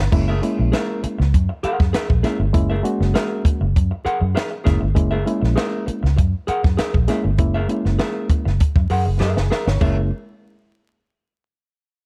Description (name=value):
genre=funk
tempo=99 BPM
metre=4/4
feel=straight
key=F# mixolydian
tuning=A4 = 441 Hz
part: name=vintage hollow-body jazz guitar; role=accompaniment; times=0.0-10.0 s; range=G#4 to F#5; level=-28 LUFS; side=equal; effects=none
part: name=vintage muted fingered electric bass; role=bass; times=0.0-10.1 s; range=F#1 to F#2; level=-22 LUFS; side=equal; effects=none
part: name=reed electric piano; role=stabs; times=0.1-10.1 s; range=G#3 to C#5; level=-26 LUFS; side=equal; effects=none
part: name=compact cocktail drum kit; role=drums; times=0.1-10.0 s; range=crash cymbal, hi-hat, kick drum, snare drum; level=-22 LUFS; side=equal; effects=none
room=little or no reverb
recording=dark, warm production, vinyl crackle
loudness=-19 LUFS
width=mono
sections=0.1-9.8 A section; 9.8-12.1 B section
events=drum fill 9.2-9.8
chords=0.1 F#9